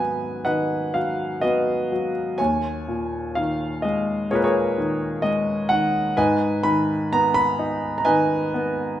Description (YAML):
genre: classical, lyrical solo piano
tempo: 64 BPM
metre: 4/4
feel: rubato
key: G# dorian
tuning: A4 = 438 Hz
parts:
  - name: clear grand piano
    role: solo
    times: 0.0-9.0 s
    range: D#2 to B5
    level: -20 LUFS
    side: equal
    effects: none
room: moderate recital hall reverb, RT60 1.3 s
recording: minimal, uncompressed stereo recording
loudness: -20 LUFS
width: side -12 dB against mid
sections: 0.0-9.0 A section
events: none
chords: 0.0 G#m7; 2.4 D#7sus4; 6.2 G#m